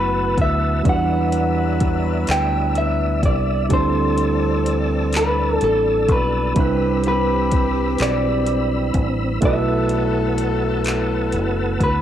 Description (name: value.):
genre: slow six-eight R&B.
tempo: 42 BPM (dotted quarters).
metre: 6/8.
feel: straight.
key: unclear.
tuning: A4 = 439 Hz.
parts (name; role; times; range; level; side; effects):
electric guitar at the edge of break-up; melody; 0.0-12.0 s; A4 to G5; -22 LUFS; left 1 dB; cassette tape, tape echo.
overdriven tine electric piano; accompaniment; 0.0-12.0 s; F#3 to B4; -23 LUFS; right 7 dB; none.
tonewheel organ; sustained chords; 0.0-12.0 s; C4 to E6; -28 LUFS; left 1 dB; chorus vibrato, fast rotary speaker.
warm horn section; stabs; 0.0-11.8 s; B2 to B4; -28 LUFS; left 10 dB; none.
deep dub fingered electric bass; bass; 0.0-12.0 s; F#1 to E2; -22 LUFS; left 1 dB; none.
smooth R&B drum kit; drums; 0.4-12.0 s; handclaps, hi-hat, kick drum; -22 LUFS; left 1 dB; cassette tape.
room: digital ambience.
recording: home recording on cassette.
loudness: -17 LUFS.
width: side -10 dB against mid.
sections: 0.0-12.0 A section.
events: none.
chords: 0.0 B7sus4; 0.9 Em9; 3.7 D9sus4; 9.4 B7sus4.